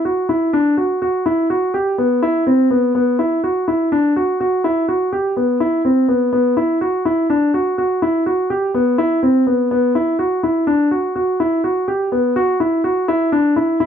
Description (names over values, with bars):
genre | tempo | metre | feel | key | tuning
progressive instrumental, progressive | 249 BPM (eighths) | 7/8 | straight | unclear | A4 = 440 Hz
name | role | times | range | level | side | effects
warm concert grand piano | solo | 0.1-13.9 s | B3 to G4 | -14 LUFS | equal | none
room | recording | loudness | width
light reverb | none | -14 LUFS | side -8 dB against mid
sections
0.0-12.4 A section; 12.4-13.9 B section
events
none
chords
none